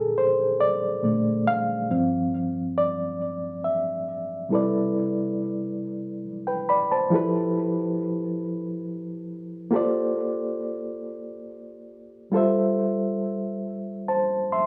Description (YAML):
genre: R&B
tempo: 46 BPM (dotted quarters)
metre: 6/8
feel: straight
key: C major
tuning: A4 = 440 Hz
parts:
  - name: reed electric piano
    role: solo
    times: 0.0-14.7 s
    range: G2 to C6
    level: -26 LUFS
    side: equal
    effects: fast tremolo, tape echo
room: light reverb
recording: small room reverb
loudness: -25 LUFS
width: mono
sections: 0.0-4.5 A section; 4.5-14.7 B section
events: reed electric piano solo 0.0-4.5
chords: 0.0 Bbmaj7; 1.9 G7sus4; 4.5 Cmaj13; 7.1 Fmaj9#11; 9.7 Bbmaj13; 12.3 G13sus4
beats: 0.59 | 1.90 3.20 | 4.51 5.81 | 7.12 8.42 | 9.72 11.03 | 12.33 13.64